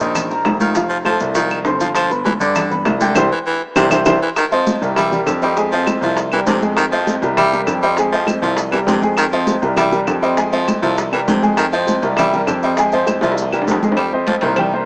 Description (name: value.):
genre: latin, salsa.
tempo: 200 BPM.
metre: 4/4.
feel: straight.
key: F minor.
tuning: A4 = 441 Hz.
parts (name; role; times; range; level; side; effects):
raspy baritone saxophone; second line; 0.0-14.8 s; C3 to G3; -19 LUFS; equal; none.
warm upright piano; accompaniment; 0.0-14.9 s; E3 to G6; -18 LUFS; equal; none.
warm grand piano; bass; 0.0-14.8 s; F1 to G2; -21 LUFS; equal; none.
congas; percussion; 0.0-14.9 s; none; -22 LUFS; equal; none.
maracas; percussion; 0.0-14.0 s; none; -33 LUFS; equal; none.
bongos and cowbell; percussion; 0.2-14.7 s; none; -24 LUFS; equal; none.
claves; percussion; 0.2-14.7 s; none; -25 LUFS; equal; none.
room: moderate plate reverb, RT60 3.1 s.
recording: rough home demo mix, small speaker sound.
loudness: -13 LUFS.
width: side -36 dB against mid.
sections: 0.0-4.4 A section; 4.4-14.0 B section.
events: drum fill 3.2-4.4, 13.2-14.0; band accent 3.2-4.4.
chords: 0.0 Ebsus2; 0.8 F; 2.0 G7; 3.2 C; 4.4 F5; 5.0 C7; 5.6 Fm7; 6.2 C7; 6.8 Fm7; 7.4 C7; 8.0 Fm7; 8.6 C7; 9.2 Fm7; 9.8 C7; 10.4 Fm7; 11.0 C7; 11.6 Fm7; 12.2 C7; 12.8 Fm7; 13.4 C7; 14.0 F5.